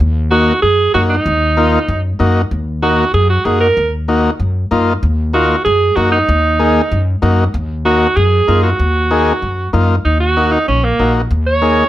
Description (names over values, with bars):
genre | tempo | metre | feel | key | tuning
latin, cumbia | 191 BPM | 4/4 | straight | Eb minor | A4 = 440 Hz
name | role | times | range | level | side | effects
upright bass | bass | 0.0-11.8 s | Bb1 to Gb2 | -15 LUFS | equal | none
edgy alto saxophone | melody | 0.3-11.9 s | Bb3 to Db5 | -14 LUFS | right 3 dB | none
overdriven combo organ | accompaniment | 0.3-11.8 s | Bb3 to Ab4 | -15 LUFS | left 2 dB | none
room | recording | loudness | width
light reverb | none | -11 LUFS | side -14 dB against mid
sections
0.0-10.1 A section; 10.1-11.9 B section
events
alto saxophone solo 10.1-11.9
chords
0.0 Ebm